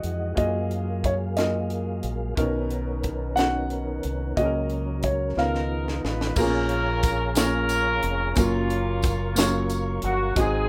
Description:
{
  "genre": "slow gospel",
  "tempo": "60 BPM (dotted quarters)",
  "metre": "6/8",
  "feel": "straight",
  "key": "F# major",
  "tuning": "A4 = 440 Hz",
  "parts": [
    { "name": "warm concert grand piano", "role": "melody", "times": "0.0-6.1 s", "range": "C#5 to F#5", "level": "-30 LUFS", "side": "equal", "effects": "none" },
    { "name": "warm upright piano", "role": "accompaniment", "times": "0.0-10.7 s", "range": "G#2 to C#5", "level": "-31 LUFS", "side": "equal", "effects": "none" },
    { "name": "mellow French horn section", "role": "sustained chords", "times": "0.0-6.4 s", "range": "E3 to E#5", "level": "-41 LUFS", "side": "equal", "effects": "none" },
    { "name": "tonewheel organ", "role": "sustained chords", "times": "0.0-10.7 s", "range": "D#3 to D#6", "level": "-36 LUFS", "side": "equal", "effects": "chorus vibrato, stopped rotary speaker" },
    { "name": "deep dub fingered electric bass", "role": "bass", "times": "0.0-10.7 s", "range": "E#1 to F#2", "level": "-31 LUFS", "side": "equal", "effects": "none" },
    { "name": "crisp fusion drum kit", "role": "drums", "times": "0.0-10.5 s", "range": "crash cymbal, hi-hat, kick drum, snare drum", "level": "-30 LUFS", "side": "equal", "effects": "none" },
    { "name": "warm horn section", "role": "melody", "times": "5.4-10.7 s", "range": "A#3 to B4", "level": "-30 LUFS", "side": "equal", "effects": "none" },
    { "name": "tambourine", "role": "percussion", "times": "6.4-10.7 s", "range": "none", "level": "-36 LUFS", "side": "equal", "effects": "none" }
  ],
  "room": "light reverb",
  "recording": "rough home demo mix",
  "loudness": "-25 LUFS",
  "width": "mono",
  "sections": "0.0-6.4 A section; 6.4-10.7 B section",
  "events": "drum fill 5.4-6.4",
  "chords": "0.4 F#maj9; 2.4 Bmaj9; 4.4 F#/C#; 5.4 C#13; 6.4 A#m7; 8.4 F#maj7"
}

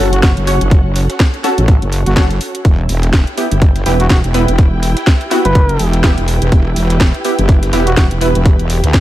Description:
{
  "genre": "bass house",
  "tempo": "124 BPM",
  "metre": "4/4",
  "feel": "swing 58% on 16ths",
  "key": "unclear",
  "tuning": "A4 = 441 Hz",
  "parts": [
    { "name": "orchestra-hit-like synth stab", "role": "stabs", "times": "0.0-8.3 s", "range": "B3 to C#5", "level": "-19 LUFS", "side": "right 1 dB", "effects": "built-in reverb, sidechain pumping, tape echo" },
    { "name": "wobble bass", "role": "bass", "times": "0.0-9.0 s", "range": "E1 to D2", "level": "-14 LUFS", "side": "equal", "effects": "chorus, tube saturation, sidechain pumping" },
    { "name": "dark studio string section", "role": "texture", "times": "0.0-9.0 s", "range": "C#4 to G5", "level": "-22 LUFS", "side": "right 1 dB", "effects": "sidechain pumping" },
    { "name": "trumpet with bucket mute", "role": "melody", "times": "0.1-8.1 s", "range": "F#4 to B4", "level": "-22 LUFS", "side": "equal", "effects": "tape echo" },
    { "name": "garage drum kit", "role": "drums", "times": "0.1-9.0 s", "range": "hi-hat, snare drum", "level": "-20 LUFS", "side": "equal", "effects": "overdrive" },
    { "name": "dusty soul sampler-style drum kit", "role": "drums", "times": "0.2-9.0 s", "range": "hi-hat, snare drum", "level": "-30 LUFS", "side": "equal", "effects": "none" },
    { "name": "electronic kick drum", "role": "drums", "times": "0.2-9.0 s", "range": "none", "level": "-10 LUFS", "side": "equal", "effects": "overdrive" }
  ],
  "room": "digital ambience",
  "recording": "none",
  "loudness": "-10 LUFS",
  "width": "side -14 dB against mid",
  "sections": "0.0-9.0 A section",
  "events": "none",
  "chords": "0.0 F#m; 2.6 Em"
}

